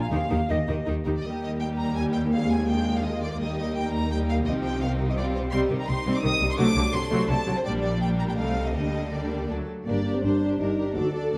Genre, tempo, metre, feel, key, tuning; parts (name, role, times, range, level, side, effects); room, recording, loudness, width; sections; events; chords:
quick classical-period movement for symphony orchestra; 155-175 BPM; 3/4; rubato; Eb major, G minor from 5.5 s; A4 = 440 Hz
small flute group; second line; 0.0-0.9 s; Eb5 to F5; -34 LUFS; equal
warm studio violin section; second line; 0.0-11.4 s; C4 to F5; -38 LUFS; equal
warm studio violin section; melody; 0.1-11.4 s; Bb4 to Eb6; -35 LUFS; equal
rich studio viola section; accompaniment; 0.1-11.4 s; D3 to A4; -31 LUFS; equal
clear studio cello section; bass; 0.1-11.4 s; D2 to Eb3; -33 LUFS; equal
warm symphonic double bass section; bass; 0.1-11.4 s; G1 to Eb2; -31 LUFS; equal
timpani; percussion; 0.1-0.6 s; Eb3; -38 LUFS; equal
mellow French horn section; sustained chords; 9.9-11.4 s; Bb3 to A4; -28 LUFS; equal
wet recital hall reverb, RT60 1.8 s; -26 LUFS; mono
0.0-1.2 A section; 1.2-9.9 B section; 9.9-11.4 C section
0.1 Eb; 2.3 Bb7/Eb; 3.4 Eb; 4.5 Cm; 6.6 D7/C; 7.6 Gm/Bb; 8.4 Am7b5/C; 8.7 Gm/D; 9.5 D (rootless); 9.9 Gm